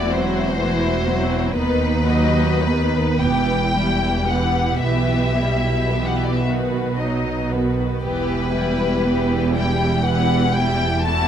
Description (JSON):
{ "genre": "classical, slow romantic movement for string orchestra", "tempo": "35-42 BPM (dotted quarters)", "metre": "6/8", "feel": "rubato", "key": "E minor", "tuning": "A4 = 441 Hz", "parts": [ { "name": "rich studio violin section", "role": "melody", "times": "0.0-11.3 s", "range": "B4 to A5", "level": "-24 LUFS", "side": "left 4 dB", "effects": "none" }, { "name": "warm studio violin section", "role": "second line", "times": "0.0-11.3 s", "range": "D#4 to D#5", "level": "-26 LUFS", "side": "equal", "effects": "none" }, { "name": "rich studio viola section", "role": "accompaniment", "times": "0.0-11.3 s", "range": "D#3 to D#4", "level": "-25 LUFS", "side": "right 2 dB", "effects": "none" }, { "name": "clear studio double bass section", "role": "bass", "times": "0.0-11.3 s", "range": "E1 to D#2", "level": "-23 LUFS", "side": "right 2 dB", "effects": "none" }, { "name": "rich studio cello section", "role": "bass", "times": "0.0-11.3 s", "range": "D#2 to B2", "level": "-23 LUFS", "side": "right 1 dB", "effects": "none" } ], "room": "moderate scoring stage reverb, RT60 1.5 s", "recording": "none", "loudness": "-17 LUFS", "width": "side -9 dB against mid", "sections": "0.0-11.3 A section", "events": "none", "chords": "0.0 F#m7b5/E; 1.6 B/D#; 3.2 Em; 4.8 Em/B; 6.5 B; 8.0 Em" }